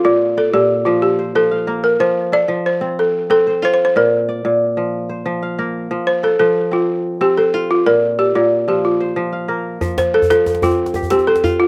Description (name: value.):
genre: west african traditional, West African string and xylophone music.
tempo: 123 BPM (dotted quarters).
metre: 12/8.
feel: straight.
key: F major.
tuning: A4 = 440 Hz.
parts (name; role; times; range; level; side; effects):
balafon; melody; 0.0-11.7 s; F4 to D5; -17 LUFS; equal; none.
kora; arpeggios; 0.0-11.7 s; Bb2 to F5; -22 LUFS; equal; none.
djembe; percussion; 9.8-11.6 s; none; -26 LUFS; equal; none.
room: light reverb.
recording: recorded outdoors, with no room sound.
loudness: -16 LUFS.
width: mono.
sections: 0.0-9.8 A section; 9.8-11.7 A section.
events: none.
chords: 0.0 Bb; 2.0 F; 4.0 Bb; 5.9 F; 7.9 Bb; 9.8 F.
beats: | 0.05 0.54 1.02 1.51 | 2.00 2.49 2.98 3.47 | 3.96 4.44 4.93 5.42 | 5.91 6.40 6.89 7.37 | 7.86 8.35 8.84 9.32 | 9.81 10.30 10.79 11.27.